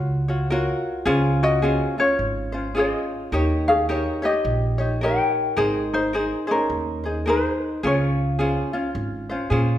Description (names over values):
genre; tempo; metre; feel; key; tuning
Hawaiian; 106 BPM; 4/4; swing 60% on 8ths; Db major; A4 = 440 Hz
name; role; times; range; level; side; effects
ukulele; accompaniment; 0.0-9.8 s; Db4 to Db5; -24 LUFS; equal; none
upright bass; bass; 0.0-9.8 s; Ab1 to Bb2; -25 LUFS; right 1 dB; none
ukulele; melody; 1.4-9.5 s; Db4 to G5; -23 LUFS; left 2 dB; none
room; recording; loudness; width
wet recital hall reverb, RT60 1.4 s; recorded in a church or concert hall; -20 LUFS; side -12 dB against mid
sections
0.0-9.8 A section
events
none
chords
0.0 Gbmaj7; 1.1 Dbmaj7; 3.3 Eb7; 5.6 Abadd9; 7.8 Dbmaj7